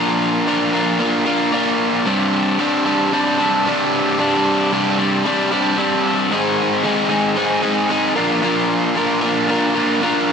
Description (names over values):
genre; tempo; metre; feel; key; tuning
rock; 113 BPM; 4/4; straight; unclear; A4 = 440 Hz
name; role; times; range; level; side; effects
overdriven electric guitar; solo; 0.0-10.3 s; C2 to Bb4; -15 LUFS; equal; spring reverb
room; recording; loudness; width
moderate large studio reverb, RT60 0.8 s, digital ambience; dense, heavily limited modern master; -15 LUFS; side -6 dB against mid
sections
0.0-10.3 A section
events
none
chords
0.0 Bb; 2.1 Csus2; 6.3 Ab; 8.2 Bb